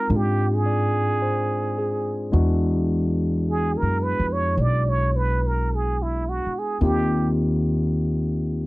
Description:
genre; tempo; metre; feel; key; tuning
jazz ballad; 54 BPM; 4/4; swing 68% on 8ths; unclear; A4 = 440 Hz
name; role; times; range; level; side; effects
trumpet with plunger mute; melody; 0.0-7.3 s; E4 to D5; -25 LUFS; right 2 dB; none
barky tine electric piano; accompaniment; 0.0-8.7 s; Ab3 to G5; -26 LUFS; left 2 dB; none
upright bass; bass; 0.1-8.7 s; B1 to Ab2; -23 LUFS; equal; none
room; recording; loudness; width
little or no reverb; dry, close 1970s-style studio recording; -20 LUFS; side -20 dB against mid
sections
0.0-8.7 A section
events
muted trumpet solo 0.0-8.7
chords
0.0 Fm9; 2.3 E9; 6.8 Eb69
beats
0.12 1.23 | 2.34 3.46 4.57 5.70 | 6.81 7.92

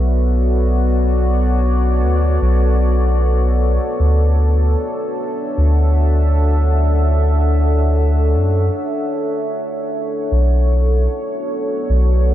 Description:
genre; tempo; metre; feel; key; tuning
ambient dub; free time; none; none; B minor; A4 = 440 Hz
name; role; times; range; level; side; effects
deep dark ambient pad; sustained chords; 0.0-12.3 s; B3 to F#5; -20 LUFS; left 1 dB; chorus, built-in reverb
soft dub sub bass; bass; 0.0-12.3 s; B1 to F#2; -14 LUFS; equal; none
room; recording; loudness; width
light reverb; none; -14 LUFS; side -12 dB against mid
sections
0.0-10.3 A section; 10.3-12.3 B section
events
break 8.7-10.3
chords
0.0 Bm7; 4.0 Dmaj7; 10.3 Bm7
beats
free time

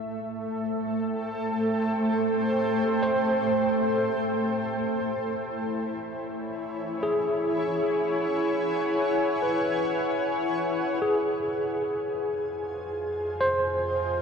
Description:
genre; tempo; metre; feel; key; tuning
ambient; free time; none; none; unclear; A4 = 443 Hz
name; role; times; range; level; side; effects
granular cloud pad; sustained chords; 0.0-14.2 s; A3 to G#5; -26 LUFS; equal; built-in reverb
overdriven tine electric piano; arpeggios; 3.0-14.2 s; G#4 to C5; -28 LUFS; equal; fast tremolo, tape echo
deep rumbling drone; bass; 12.4-14.2 s; F2; -39 LUFS; equal; built-in reverb
room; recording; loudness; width
wet huge ambient reverb, RT60 7.9 s; dark, warm production, faint mains hum; -24 LUFS; side -6 dB against mid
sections
0.0-11.0 A section; 11.0-14.2 B section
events
filter sweep on ambient pad 0.0-11.0; fade-in on ambient pad 11.0-14.2; fade-in on synth drone 11.0-14.2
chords
0.0 Am7; 4.6 E6; 11.0 Fm9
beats
free time

